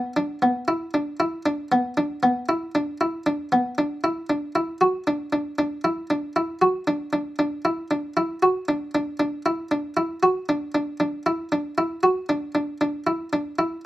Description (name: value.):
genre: contemporary instrumental, contemporary.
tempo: 232 BPM (eighths).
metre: 7/8.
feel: straight.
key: unclear.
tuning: A4 = 440 Hz.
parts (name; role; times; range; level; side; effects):
buff-stop harpsichord; solo; 0.0-13.8 s; B3 to F#4; -22 LUFS; equal; none.
room: little or no reverb.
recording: close, detailed microphones.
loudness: -22 LUFS.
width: side -16 dB against mid.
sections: 0.0-3.8 A section; 3.8-13.9 B section.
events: none.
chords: none.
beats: | 0.16 0.42 0.68 0.94 1.20 1.46 1.71 | 1.97 2.23 2.49 2.75 3.00 3.26 3.52 | 3.78 4.04 4.29 4.55 4.81 5.07 5.33 | 5.59 5.84 6.10 6.36 6.62 6.88 7.13 | 7.39 7.65 7.91 8.17 8.43 8.68 8.94 | 9.20 9.46 9.72 9.97 10.23 10.49 10.75 | 11.01 11.26 11.52 11.78 12.04 12.29 12.55 | 12.81 13.07 13.33 13.59.